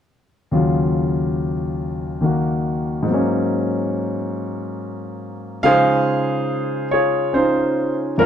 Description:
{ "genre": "solo jazz", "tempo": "94 BPM", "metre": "4/4", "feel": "swing 67% on 8ths", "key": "Db major", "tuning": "A4 = 440 Hz", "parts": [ { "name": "warm concert grand piano", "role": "solo", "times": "0.5-8.3 s", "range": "Eb2 to F5", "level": "-18 LUFS", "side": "equal", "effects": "none" } ], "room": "moderate large studio reverb, RT60 1.1 s", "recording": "dark, warm production", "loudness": "-18 LUFS", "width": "side -9 dB against mid", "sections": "0.5-5.6 A section; 5.6-8.3 B section", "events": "none", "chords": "0.5 Ebm9; 3.1 Ab9sus4; 5.6 Dbmaj9", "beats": "| 0.51 1.15 1.79 2.43 | 3.07 3.71 4.35 4.99 | 5.63 6.27 6.91 7.54 | 8.18" }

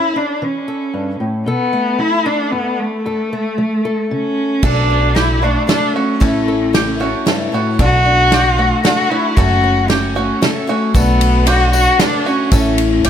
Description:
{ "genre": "indie folk with a building arrangement", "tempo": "114 BPM", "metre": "3/4", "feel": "straight", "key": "B minor", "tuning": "A4 = 440 Hz", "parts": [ { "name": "warm cello", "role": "melody", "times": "0.0-13.1 s", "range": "A3 to F#4", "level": "-16 LUFS", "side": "left 1 dB", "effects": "tape echo" }, { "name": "fingerpicked acoustic archtop guitar", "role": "accompaniment", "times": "0.0-12.5 s", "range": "F#2 to A4", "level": "-22 LUFS", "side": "left 2 dB", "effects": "none" }, { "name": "picked twelve-string acoustic guitar", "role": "accompaniment", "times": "4.6-13.1 s", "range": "F#2 to A4", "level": "-22 LUFS", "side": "left 6 dB", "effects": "none" }, { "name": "bluegrass banjo", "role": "arpeggios", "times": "4.6-13.1 s", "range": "F#4 to A4", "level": "-23 LUFS", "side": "right 5 dB", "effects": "tape echo" }, { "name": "upright bass", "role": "bass", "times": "4.6-13.1 s", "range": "F#1 to B1", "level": "-17 LUFS", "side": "right 1 dB", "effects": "none" }, { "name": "natural country drum kit", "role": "drums", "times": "4.6-13.1 s", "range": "crash cymbal, kick drum, ride cymbal, snare drum", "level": "-18 LUFS", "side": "right 1 dB", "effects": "none" }, { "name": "dark upright piano", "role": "accompaniment", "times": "10.9-13.1 s", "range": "A1 to E5", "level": "-26 LUFS", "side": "right 2 dB", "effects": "none" }, { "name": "tambourine", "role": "percussion", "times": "11.0-13.1 s", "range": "none", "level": "-30 LUFS", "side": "left 8 dB", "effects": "none" } ], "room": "light reverb, small room ambience", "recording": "none", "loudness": "-13 LUFS", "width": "side -9 dB against mid", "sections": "0.0-4.6 A section; 4.6-10.9 B section; 10.9-13.1 C section", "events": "none", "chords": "0.0 A; 1.5 B5; 3.0 F#m; 4.6 Bm7; 6.2 A; 7.8 Bm7; 9.4 F#m; 10.9 Bm7; 12.5 A", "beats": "0.41 0.94 | 1.46 1.99 2.52 | 3.05 3.58 4.11 | 4.63 5.16 5.69 | 6.22 6.74 7.27 | 7.80 8.32 8.85 | 9.37 9.90 10.43 | 10.95 11.47 12.00 | 12.52 13.05" }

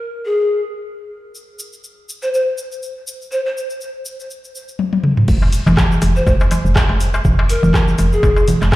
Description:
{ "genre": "afro house", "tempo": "122 BPM", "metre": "4/4", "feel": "swing 56% on 16ths", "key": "F minor pentatonic", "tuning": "A4 = 440 Hz", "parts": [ { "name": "breathy large pan pipes", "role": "melody", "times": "0.3-8.5 s", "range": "Ab4 to C5", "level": "-20 LUFS", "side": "left 1 dB", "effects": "dub echo" }, { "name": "cabasa", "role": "percussion", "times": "1.4-8.8 s", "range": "none", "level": "-34 LUFS", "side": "left 1 dB", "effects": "none" }, { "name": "afro-pop drum kit", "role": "drums", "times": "4.8-8.8 s", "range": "crash cymbal, handclaps, hi-hat, rim click, toms", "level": "-19 LUFS", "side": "left 1 dB", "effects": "none" }, { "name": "woody FM bass", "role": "bass", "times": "5.3-8.8 s", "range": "F1", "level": "-16 LUFS", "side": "equal", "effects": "sidechain pumping" }, { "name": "electronic kick drum", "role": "drums", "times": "5.3-8.8 s", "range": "none", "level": "-15 LUFS", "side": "equal", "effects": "none" }, { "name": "congas", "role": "percussion", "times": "5.3-8.8 s", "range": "none", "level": "-23 LUFS", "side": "right 2 dB", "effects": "none" }, { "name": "darbuka", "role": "percussion", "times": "5.4-8.7 s", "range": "none", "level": "-20 LUFS", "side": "left 1 dB", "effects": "none" } ], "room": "light reverb, small room ambience", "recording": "played on a big sound system in a bare room, large studio reverb", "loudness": "-14 LUFS", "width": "side -17 dB against mid", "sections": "0.0-5.3 A section; 5.3-8.8 B section", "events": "drum fill 4.8-5.3; drop 5.3-8.8", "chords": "0.0 N.C.; 5.3 F5", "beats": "0.37 0.86 | 1.35 1.84 2.33 2.83 | 3.32 3.81 4.30 4.79 | 5.28 5.78 6.27 6.76 | 7.25 7.74 8.23 8.73" }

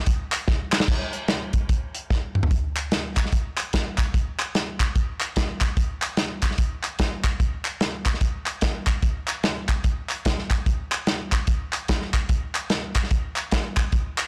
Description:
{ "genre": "gospel", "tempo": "147 BPM", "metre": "4/4", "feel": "swing 61% on 8ths", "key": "none", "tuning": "none", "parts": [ { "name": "natural country drum kit", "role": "drums", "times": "0.0-14.3 s", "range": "crash cymbal, hi-hat, kick drum, snare drum, toms", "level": "-25 LUFS", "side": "equal", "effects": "soft clipping on snare" }, { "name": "group handclap", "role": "percussion", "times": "0.3-14.3 s", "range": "none", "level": "-32 LUFS", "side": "equal", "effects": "none" } ], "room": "light reverb", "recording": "blown-out, overdriven recording, overdrive", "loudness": "-25 LUFS", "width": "mono", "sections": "0.9-2.5 A section; 2.5-14.3 B section", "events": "drum fill 0.5-0.9, 2.1-2.5", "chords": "none", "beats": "0.08 0.48 | 0.89 1.29 1.70 2.10 | 2.51 2.92 3.32 3.73 | 4.14 4.54 4.95 5.36 | 5.77 6.17 6.58 6.99 | 7.40 7.80 8.21 8.62 | 9.03 9.44 9.84 10.25 | 10.66 11.07 11.48 11.88 | 12.29 12.70 13.11 13.52 | 13.93" }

